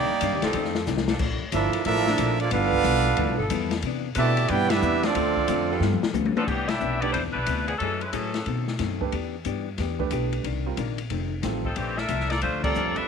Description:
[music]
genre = jazz, big band swing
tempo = 182 BPM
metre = 4/4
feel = swing 65% on 8ths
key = C major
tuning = A4 = 440 Hz
[part]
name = bright trumpet section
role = melody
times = 0.0-6.0 s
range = Bb3 to A5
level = -25 LUFS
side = right 2 dB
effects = none
[part]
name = warm trombone section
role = second line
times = 0.0-6.0 s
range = B2 to G4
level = -27 LUFS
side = right 15 dB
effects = none
[part]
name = vintage hollow-body jazz guitar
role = accompaniment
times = 0.0-13.0 s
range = F2 to A4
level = -31 LUFS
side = left 15 dB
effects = none
[part]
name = upright bass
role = bass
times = 0.0-13.0 s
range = F1 to C3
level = -29 LUFS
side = equal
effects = none
[part]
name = open jazz drum kit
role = drums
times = 0.2-13.0 s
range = crash cymbal, hi-hat, kick drum, ride cymbal, snare drum, toms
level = -30 LUFS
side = left 5 dB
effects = none
[part]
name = warm saxophone section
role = sustained chords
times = 0.4-6.4 s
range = E3 to B4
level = -33 LUFS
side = equal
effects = none
[part]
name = bright saxophone section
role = melody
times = 6.4-8.8, 11.6-13.1 s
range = E3 to E5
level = -27 LUFS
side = left 2 dB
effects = tape echo
[part]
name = clear concert grand piano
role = accompaniment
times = 7.0-13.1 s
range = G3 to B4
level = -31 LUFS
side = right 14 dB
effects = none
[sound]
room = light reverb, small room ambience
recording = 1960s-style stereo with parts hard left and right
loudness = -22 LUFS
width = side -6 dB against mid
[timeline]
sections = 0.0-6.5 A section; 6.5-13.1 B section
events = drum fill 0.9-1.2, 5.8-6.5; band accent 4.7, 6.6, 12.6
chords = 0.0 Cm9; 1.2 Bbmaj7; 2.5 G13; 3.8 Cmaj9; 5.2 Dm7; 5.8 G9; 6.5 Cmaj9; 7.8 F#m9; 8.5 B7b9; 9.1 Em7; 10.4 Cm9; 11.1 F7; 11.8 Bbmaj7

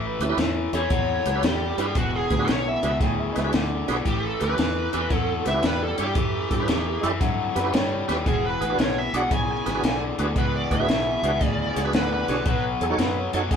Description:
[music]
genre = electric blues shuffle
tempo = 114 BPM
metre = 4/4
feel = swing 67% on 8ths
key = unclear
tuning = A4 = 440 Hz
[part]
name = clear upright piano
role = second line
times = 0.0-8.2, 12.8-13.6 s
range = C#4 to G#5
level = -31 LUFS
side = right 3 dB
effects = none
[part]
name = overdriven electric guitar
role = riff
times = 0.0-13.6 s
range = E2 to G#3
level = -27 LUFS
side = left 4 dB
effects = none
[part]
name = fingered electric bass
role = bass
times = 0.0-13.6 s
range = E1 to G2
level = -29 LUFS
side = equal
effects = none
[part]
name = tonewheel organ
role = accompaniment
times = 0.2-13.4 s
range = C#4 to D5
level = -28 LUFS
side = right 4 dB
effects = slow rotary speaker, overdrive, chorus vibrato
[part]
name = compact cocktail drum kit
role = drums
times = 0.2-13.6 s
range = hi-hat, kick drum, snare drum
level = -26 LUFS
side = equal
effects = none
[part]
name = smooth overdriven lead guitar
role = melody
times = 0.8-12.6 s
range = F#4 to G#5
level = -27 LUFS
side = right 2 dB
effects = none
[sound]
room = light reverb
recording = band playing live in one room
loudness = -21 LUFS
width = side -7 dB against mid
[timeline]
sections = 0.0-13.6 A section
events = none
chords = 0.0 A7; 2.0 E7; 4.1 A7; 8.3 E7; 12.5 B7

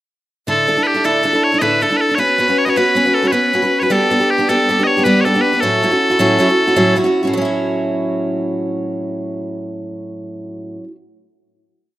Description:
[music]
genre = celtic folk, Celtic slip jig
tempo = 105 BPM (dotted quarters)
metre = 9/8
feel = straight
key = A mixolydian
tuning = A4 = 440 Hz
[part]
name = loud bright bagpipes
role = melody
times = 0.5-7.0 s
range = G4 to D#5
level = -15 LUFS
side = left 1 dB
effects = none
[part]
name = picked steel-string acoustic guitar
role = accompaniment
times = 0.5-10.9 s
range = A2 to B4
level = -16 LUFS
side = right 1 dB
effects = none
[sound]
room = light reverb, studio reverb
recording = rough home demo mix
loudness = -13 LUFS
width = side -15 dB against mid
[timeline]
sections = 0.5-7.3 A section; 7.3-10.8 final chord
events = none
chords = 0.5 Asus4; 2.2 Bsus2; 3.9 G; 5.6 A6

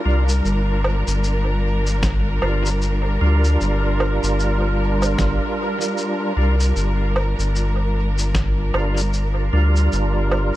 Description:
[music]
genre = ambient dub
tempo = 76 BPM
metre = 4/4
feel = swing 59% on 16ths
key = G minor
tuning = A4 = 440 Hz
[part]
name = warm symphonic string section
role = sustained chords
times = 0.0-10.6 s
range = G3 to Bb4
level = -26 LUFS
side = equal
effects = none
[part]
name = percussive tonewheel organ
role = stabs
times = 0.1-10.6 s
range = G3 to Bb4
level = -25 LUFS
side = right 2 dB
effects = overdrive, chorus vibrato, slow rotary speaker, dub echo
[part]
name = round analog bass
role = bass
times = 0.1-10.5 s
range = G1 to D2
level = -19 LUFS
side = equal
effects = none
[part]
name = electronic shaker, woodblock and snare drum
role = drums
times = 0.3-10.5 s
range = none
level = -28 LUFS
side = equal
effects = dub echo
[part]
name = electronic kick drum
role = drums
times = 2.0-8.5 s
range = none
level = -25 LUFS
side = equal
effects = overdrive
[sound]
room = digital ambience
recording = none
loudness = -17 LUFS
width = side -15 dB against mid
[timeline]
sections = 0.0-10.6 A section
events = none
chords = 0.0 Gm7

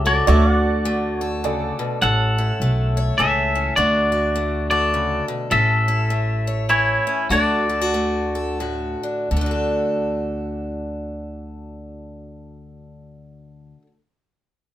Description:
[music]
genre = honky-tonk and classic country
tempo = 82-103 BPM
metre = 3/4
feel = swing 61% on 8ths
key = D major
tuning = A4 = 440 Hz
[part]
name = twangy electric guitar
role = melody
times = 0.0-8.6 s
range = E4 to F#5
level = -20 LUFS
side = left 1 dB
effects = none
[part]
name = honky-tonk upright piano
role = accompaniment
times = 0.0-2.0 s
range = E4 to D5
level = -27 LUFS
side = right 7 dB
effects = none
[part]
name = picked steel-string acoustic guitar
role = accompaniment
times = 0.0-14.0 s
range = A2 to C#5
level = -25 LUFS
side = left 1 dB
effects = none
[part]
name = pedal steel guitar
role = sustained chords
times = 0.0-2.0 s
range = C#5 to F#5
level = -28 LUFS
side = right 3 dB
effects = none
[part]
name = upright bass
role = bass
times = 0.0-13.7 s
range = A1 to D2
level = -22 LUFS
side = equal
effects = none
[sound]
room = moderate studio reverb, RT60 0.8 s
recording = minimal, uncompressed stereo recording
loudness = -18 LUFS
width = side -12 dB against mid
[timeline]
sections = 0.0-2.0 A section; 2.0-9.3 B section; 9.3-13.7 C section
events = slowing down 5.5-9.3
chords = 0.3 D; 2.0 A; 3.8 D; 5.5 A; 7.3 D

